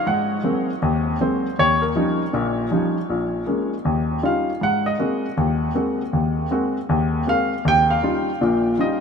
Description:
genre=solo jazz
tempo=158 BPM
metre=4/4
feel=swing 65% on 8ths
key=unclear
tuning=A4 = 440 Hz
part: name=dark baby grand piano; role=solo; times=0.0-9.0 s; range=Bb1 to G5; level=-18 LUFS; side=left 1 dB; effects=none
room=moderate huge ambient reverb, RT60 7.1 s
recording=none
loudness=-18 LUFS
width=side -6 dB against mid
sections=0.0-9.0 A section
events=grand piano solo 0.0-9.0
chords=0.1 Ab9; 1.6 Eb9; 3.1 Bbm7; 3.8 Eb9; 4.6 Ab9; 7.6 Eb9

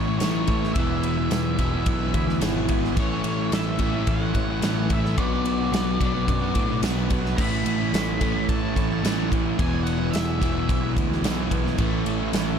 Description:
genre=rock, shoegaze and dream pop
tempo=109 BPM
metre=4/4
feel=straight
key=A major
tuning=A4 = 440 Hz
part: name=octave-fuzz lead guitar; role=melody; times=0.0-10.9 s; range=C#5 to B5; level=-32 LUFS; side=left 1 dB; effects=distortion, tape echo
part: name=twelve-string electric guitar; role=arpeggios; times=0.0-12.6 s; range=E3 to A4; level=-34 LUFS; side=right 1 dB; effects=analog chorus, tape echo
part: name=overdriven electric guitar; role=riff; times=0.0-12.6 s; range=E2 to B3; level=-30 LUFS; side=equal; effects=none
part: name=raw garage guitar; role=riff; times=0.0-12.6 s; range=A2 to F#4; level=-30 LUFS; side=right 13 dB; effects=overdrive, reverse reverb
part: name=thick fuzz guitar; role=riff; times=0.0-12.6 s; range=E2 to B3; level=-30 LUFS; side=left 12 dB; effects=distortion, wide subtle chorus
part: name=growling picked electric bass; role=bass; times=0.0-12.6 s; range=E1 to A2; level=-28 LUFS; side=equal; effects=overdrive
part: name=big rock drum kit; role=drums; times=0.2-12.5 s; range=crash cymbal, kick drum, ride cymbal, snare drum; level=-26 LUFS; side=equal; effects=none
part: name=tambourine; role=percussion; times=0.2-12.5 s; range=none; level=-40 LUFS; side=right 13 dB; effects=none
room=small room ambience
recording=dark, warm production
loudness=-21 LUFS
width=side -7 dB against mid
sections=0.0-12.6 A section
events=none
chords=0.0 A; 0.8 E; 3.0 A; 5.2 Bm; 7.4 A; 9.6 E; 11.8 A

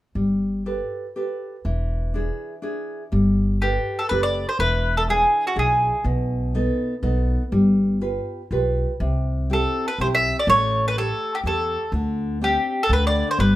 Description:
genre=italian folk, Italian serenade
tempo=123 BPM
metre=3/4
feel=swing 55% on 8ths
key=G major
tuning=A4 = 440 Hz
part: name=nylon-string guitar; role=accompaniment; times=0.2-13.6 s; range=B2 to C#5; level=-24 LUFS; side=equal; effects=none
part: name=upright bass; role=bass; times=0.2-13.6 s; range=E1 to E2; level=-24 LUFS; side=equal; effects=none
part: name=mandolin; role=melody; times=3.6-6.0, 9.5-13.6 s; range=F#4 to E5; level=-20 LUFS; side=equal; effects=plate reverb
room=moderate studio reverb, RT60 0.5 s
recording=none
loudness=-20 LUFS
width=side -15 dB against mid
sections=0.2-3.1 A section; 3.1-13.6 B section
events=none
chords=0.2 Gadd9; 1.6 E7; 3.1 Gadd9; 4.6 E7; 6.1 B7; 7.5 G7; 9.0 C; 10.5 A7; 11.9 D7sus4; 12.9 Bm/D

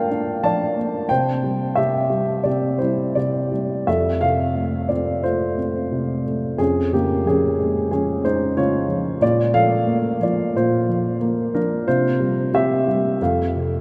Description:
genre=classical, lyrical solo piano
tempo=90 BPM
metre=4/4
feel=rubato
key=F major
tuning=A4 = 439 Hz
part: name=dark baby grand piano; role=solo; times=0.0-13.8 s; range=F2 to A5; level=-20 LUFS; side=equal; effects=none
room=wet cathedral reverb, RT60 6.0 s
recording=in a vast, echoing space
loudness=-20 LUFS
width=mono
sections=0.0-13.8 A section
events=none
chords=0.0 Bb; 1.1 C; 3.9 F; 6.6 Db/F; 9.2 Bb; 11.9 Csus4; 13.2 F

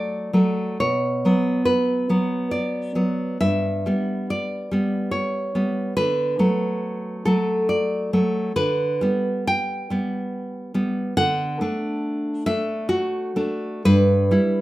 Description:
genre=romantic piece for solo classical guitar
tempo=69 BPM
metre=3/4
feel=uneven beats, rubato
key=D major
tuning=A4 = 441 Hz
part: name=nylon-string guitar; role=solo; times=0.0-14.6 s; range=G2 to G5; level=-20 LUFS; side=equal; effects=none
room=moderate studio reverb, RT60 0.6 s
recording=rough home demo mix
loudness=-20 LUFS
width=side -16 dB against mid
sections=0.0-14.6 A section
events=none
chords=0.0 D; 0.8 Bm; 3.4 G; 6.0 D; 8.5 G/D; 11.2 D; 13.9 Em/G

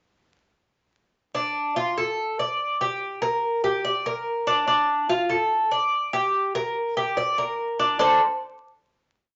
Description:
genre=latin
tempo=145 BPM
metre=4/4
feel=straight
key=D minor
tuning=A4 = 440 Hz
part: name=Cuban tres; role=solo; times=1.3-8.2 s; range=D4 to D5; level=-24 LUFS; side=equal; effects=none
room=wet studio reverb, RT60 0.8 s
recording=vinyl crackle, nothing above 7.6 kHz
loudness=-24 LUFS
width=mono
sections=1.3-8.0 montuno (vamp); 8.0-9.4 final chord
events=none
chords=1.3 Dm; 3.0 Gm; 4.7 Dm; 6.3 Gm; 8.0 D5

